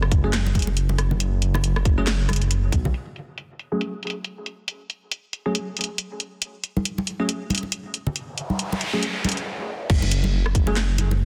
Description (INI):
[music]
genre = deep dubstep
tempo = 138 BPM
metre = 4/4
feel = swing 58% on 16ths, half-time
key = F# minor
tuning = A4 = 440 Hz
[part]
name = dark detuned saw bass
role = bass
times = 0.0-2.9, 9.9-11.2 s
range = F#1 to B1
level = -24 LUFS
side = equal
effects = none
[part]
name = garage drum kit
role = drums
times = 0.0-11.1 s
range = crash cymbal, hi-hat, rim click, snare drum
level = -29 LUFS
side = equal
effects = low-pass filter on hats, soft clipping on snare, low-pass filter on snare, low-pass filter on cymbals, low-pass filter on room
[part]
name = electronic kick drum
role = drums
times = 0.1-2.8, 9.9-10.7 s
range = none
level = -22 LUFS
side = equal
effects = none
[part]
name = bell-like tine electric piano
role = stabs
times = 0.2-10.8 s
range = F#3 to G#4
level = -32 LUFS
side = equal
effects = analog chorus, low-pass filter, dub echo
[part]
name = congas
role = percussion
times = 0.5-2.9, 6.8-11.2 s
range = none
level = -31 LUFS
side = equal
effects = dub echo
[part]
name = noise sweep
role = sound effects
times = 8.3-9.9 s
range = none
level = -32 LUFS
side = equal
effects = none
[sound]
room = light reverb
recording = dense, heavily limited modern master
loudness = -24 LUFS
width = mono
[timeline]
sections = 0.0-2.9 A section; 2.9-9.9 B section; 9.9-11.2 C section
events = filter sweep on tine electric piano 0.0-2.9, 2.9-9.9; noise sweep 8.3-9.9; stop 9.5-9.9; drop 9.9-11.2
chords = 0.0 N.C.; 2.9 F#madd9; 9.9 N.C.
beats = 0.33 0.77 | 1.20 1.64 2.07 2.51 | 2.94 3.38 3.81 4.25 | 4.68 5.11 5.55 5.98 | 6.42 6.85 7.29 7.72 | 8.16 8.59 9.03 9.46 | 9.90 10.33 10.77 11.20